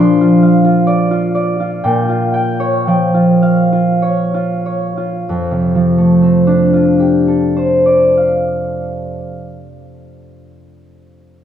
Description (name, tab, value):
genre	classical, solo harp piece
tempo	30-46 BPM (dotted quarters)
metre	6/8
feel	rubato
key	F major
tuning	A4 = 440 Hz
part	concert harp	solo	0.0-10.4 s	F2 to C6	-11 LUFS	equal	none
room	wet church reverb, RT60 2.5 s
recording	none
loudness	-11 LUFS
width	side -9 dB against mid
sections	0.0-5.3 A section; 5.3-9.0 B section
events	slowing down 0.0-5.3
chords	0.0 Bbadd9; 1.8 Bbm6; 5.3 F69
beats	0.40 | 1.82 3.41 | 5.29 7.12